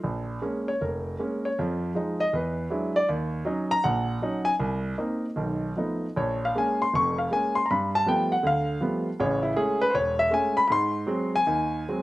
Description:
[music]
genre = solo jazz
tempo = 158 BPM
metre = 4/4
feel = swing 66% on 8ths, rubato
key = unclear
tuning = A4 = 441 Hz
[part]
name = warm concert grand piano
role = solo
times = 0.0-12.0 s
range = E1 to Db6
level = -24 LUFS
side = equal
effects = slapback echo
[sound]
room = little or no reverb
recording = recorded outdoors, with no room sound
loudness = -24 LUFS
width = side -17 dB against mid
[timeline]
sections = 0.0-12.0 A section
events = grand piano solo 0.0-12.0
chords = 0.0 Bbm7; 1.6 Fm7; 2.3 E9; 3.1 Ebm7; 4.6 Cm7; 5.4 Cb7#11; 6.2 Bbm7; 7.7 G9; 9.2 Amaj7; 10.7 Ab7

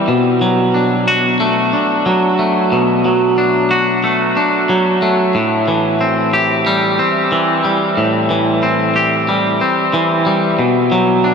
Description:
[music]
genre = rock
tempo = 91 BPM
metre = 4/4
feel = straight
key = A dorian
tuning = A4 = 440 Hz
[part]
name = twangy electric guitar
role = solo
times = 0.0-11.3 s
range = A2 to G4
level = -12 LUFS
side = equal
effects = diffuse ambient delay
[sound]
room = wet huge ambient reverb, RT60 8.7 s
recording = dreamy mix soaked in reverb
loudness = -12 LUFS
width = side -6 dB against mid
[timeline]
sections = 0.0-11.3 A section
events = none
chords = 0.1 Bm7; 5.3 Am7; 10.6 Bm

